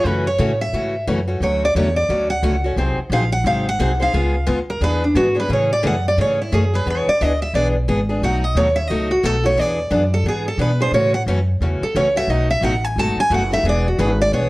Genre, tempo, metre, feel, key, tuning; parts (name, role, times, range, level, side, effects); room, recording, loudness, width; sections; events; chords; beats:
acoustic string swing (jazz manouche); 177 BPM; 4/4; swing 61% on 8ths; F# minor, A major from 5.5 s; A4 = 441 Hz
picked steel-string acoustic guitar; melody; 0.0-14.5 s; D4 to A5; -19 LUFS; right 1 dB; plate reverb
picked steel-string acoustic guitar; accompaniment; 0.0-14.5 s; B2 to B#4; -22 LUFS; left 1 dB
upright bass; bass; 0.0-14.5 s; E1 to B2; -20 LUFS; equal
moderate studio reverb, RT60 0.6 s; worn, warbling old tape, cassette tape, warbly pitch drift; -16 LUFS; side -20 dB against mid
0.0-5.5 A section; 5.5-14.5 A section
steel-string acoustic guitar solo 0.0-14.5
0.1 F#m7; 1.4 Dmaj7; 2.8 G#7; 4.1 C#7; 4.8 E7; 5.5 Amaj7; 6.9 E7; 8.2 B7; 9.6 E7; 10.9 A6; 12.3 B7; 13.6 E7
| 0.06 0.40 0.74 1.08 | 1.42 1.76 2.10 2.44 | 2.78 3.12 3.46 3.79 | 4.13 4.47 4.81 5.15 | 5.49 5.83 6.17 6.51 | 6.85 7.19 7.53 7.87 | 8.21 8.55 8.89 9.23 | 9.57 9.91 10.25 10.59 | 10.93 11.27 11.61 11.95 | 12.29 12.63 12.96 13.30 | 13.64 13.98 14.32